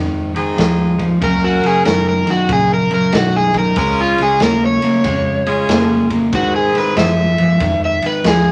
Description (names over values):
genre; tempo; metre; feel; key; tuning
electric blues shuffle; 94 BPM; 4/4; swing 65% on 8ths; Db major; A4 = 436 Hz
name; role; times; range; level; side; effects
clean electric guitar; riff; 0.0-8.5 s; Gb2 to Bb3; -19 LUFS; equal; none
vintage muted fingered electric bass; bass; 0.0-8.5 s; Gb1 to Ab2; -28 LUFS; equal; none
bright saxophone section; stabs; 0.4-7.4 s; Eb3 to Bb4; -23 LUFS; equal; none
raw garage drum kit; drums; 0.4-8.4 s; kick drum, ride cymbal, snare drum; -24 LUFS; equal; none
crunchy overdriven guitar; melody; 1.2-8.5 s; F4 to Fb5; -19 LUFS; equal; none
room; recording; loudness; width
moderate studio reverb, RT60 0.5 s; none; -15 LUFS; mono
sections
0.0-8.5 A section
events
overdriven electric guitar solo 0.0-8.5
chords
0.0 Ab; 1.2 Gb; 3.8 Db; 6.3 Ab